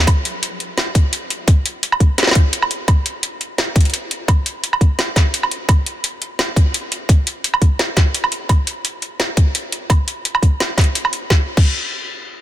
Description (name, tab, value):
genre	half-time drum and bass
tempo	171 BPM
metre	4/4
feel	swing 54% on 16ths, half-time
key	none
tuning	none
part	drum and bass drum kit	drums	0.1-11.6 s	crash cymbal, hi-hat, snare drum, woodblock	-19 LUFS	right 1 dB	none
part	electronic kick drum	drums	0.1-11.6 s	none	-12 LUFS	equal	none
room	little or no reverb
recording	dense, heavily limited modern master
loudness	-15 LUFS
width	side -13 dB against mid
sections	0.0-11.3 A section; 11.3-12.4 B section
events	none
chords	none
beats	| 0.07 0.42 0.78 1.13 | 1.48 1.83 2.18 2.53 | 2.88 3.23 3.58 3.93 | 4.28 4.63 4.99 5.34 | 5.69 6.04 6.39 6.74 | 7.09 7.44 7.79 8.14 | 8.49 8.85 9.20 9.55 | 9.90 10.25 10.60 10.95 | 11.30